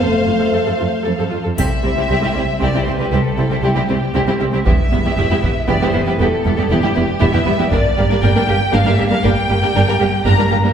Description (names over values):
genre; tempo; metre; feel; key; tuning
cinematic, epic orchestral film score; 117 BPM; 3/4; straight; C major; A4 = 441 Hz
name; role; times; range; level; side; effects
rich symphonic violin section; second line; 0.0-10.7 s; Bb3 to F5; -22 LUFS; left 1 dB; none
rich studio viola section; accompaniment; 0.0-10.7 s; G3 to A4; -20 LUFS; right 2 dB; none
dark French horn section; sustained chords; 0.0-1.1 s; A3; -18 LUFS; left 1 dB; none
rich symphonic cello section; bass; 0.0-10.7 s; C2 to G2; -21 LUFS; right 2 dB; none
rich symphonic double bass section; bass; 0.0-10.6 s; E1 to C2; -20 LUFS; right 2 dB; none
rich symphonic violin section; melody; 1.6-10.5 s; G4 to Bb5; -21 LUFS; left 2 dB; none
taiko ensemble; drums; 1.6-8.7 s; none; -19 LUFS; equal; none
triangle; percussion; 1.6-2.6 s; none; -34 LUFS; left 3 dB; none
room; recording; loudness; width
wet recital hall reverb, RT60 1.3 s; recorded in a church or concert hall; -14 LUFS; side -8 dB against mid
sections
0.0-1.6 A section; 1.6-10.7 A section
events
none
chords
0.0 F; 1.6 C; 4.7 Em; 7.7 Gm